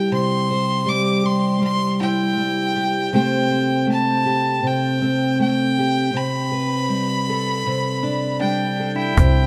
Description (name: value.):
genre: acoustic folk duo or small band.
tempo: 80 BPM.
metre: 4/4.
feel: straight.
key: unclear.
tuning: A4 = 441 Hz.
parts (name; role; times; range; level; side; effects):
rich fiddle; melody; 0.0-9.5 s; G5 to D6; -25 LUFS; equal; none.
fingerpicked steel-string acoustic guitar; accompaniment; 0.0-9.5 s; C3 to C5; -22 LUFS; equal; none.
pedal steel guitar; second line; 8.4-9.5 s; D4 to E4; -28 LUFS; equal; none.
upright bass; bass; 9.2-9.5 s; C2; -18 LUFS; equal; none.
cajon; percussion; 9.2-9.5 s; none; -19 LUFS; equal; none.
room: light reverb.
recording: dark, warm production.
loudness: -20 LUFS.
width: mono.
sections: 0.0-9.2 A section.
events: none.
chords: 0.0 C; 3.1 Am7/C; 6.2 Gadd9/C.